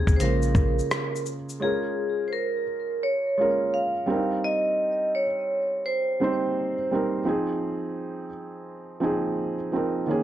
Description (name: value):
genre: lo-fi hip hop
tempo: 85 BPM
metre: 4/4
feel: swing 64% on 16ths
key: Bb dorian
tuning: A4 = 440 Hz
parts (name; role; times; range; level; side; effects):
- vibraphone with hard mallets; melody; 0.0-6.9 s; Ab4 to F5; -26 LUFS; right 1 dB; low-pass filter
- felt-muted upright piano; accompaniment; 0.0-10.2 s; Db3 to C5; -27 LUFS; right 2 dB; low-pass filter
- round analog bass; bass; 0.0-0.8 s; Bb1 to Eb2; -25 LUFS; left 1 dB; none
- dusty soul sampler-style drum kit; drums; 0.1-1.6 s; hi-hat, kick drum, rim click, shaker; -24 LUFS; left 1 dB; none
room: moderate studio reverb, RT60 0.5 s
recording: dark, warm production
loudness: -23 LUFS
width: side -12 dB against mid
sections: 0.0-1.6 A section; 1.6-10.2 B section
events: none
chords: 0.2 Bbm7; 4.1 Cm7; 7.3 Ab6